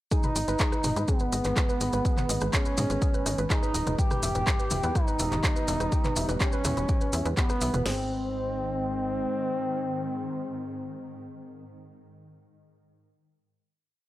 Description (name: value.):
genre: melodic techno.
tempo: 124 BPM.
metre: 4/4.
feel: straight.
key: G# harmonic minor.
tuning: A4 = 440 Hz.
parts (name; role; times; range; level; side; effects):
expressive synth lead; melody; 0.1-11.6 s; B3 to G4; -30 LUFS; equal; chorus, tape echo.
dark analog pad; sustained chords; 0.9-11.6 s; D#3 to D#5; -39 LUFS; right 1 dB; chorus, sidechain pumping.
woody wave-folded pluck; arpeggios; 0.1-8.1 s; G4 to E6; -36 LUFS; right 2 dB; analog chorus, sidechain pumping, tape echo.
swarming drone; drone; 2.4-11.6 s; G#2 to D#3; -41 LUFS; right 1 dB; none.
techno drum kit; drums; 0.1-8.0 s; crash cymbal, kick drum, snare drum; -27 LUFS; equal; none.
techno drum kit; drums; 0.1-7.8 s; handclaps, hi-hat, rim click, toms; -32 LUFS; right 1 dB; none.
maracas; percussion; 0.1-7.8 s; none; -37 LUFS; left 1 dB; none.
tight sequencer bass; bass; 0.4-9.3 s; D#1 to G#2; -31 LUFS; equal; sidechain pumping.
room: light reverb, digital ambience.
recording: dry, gritty hardware recording.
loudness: -25 LUFS.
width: side -15 dB against mid.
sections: 0.1-7.9 drop; 7.9-11.7 final chord.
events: drop 0.1-7.9.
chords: 0.1 G#m; 4.0 Em; 7.9 G#.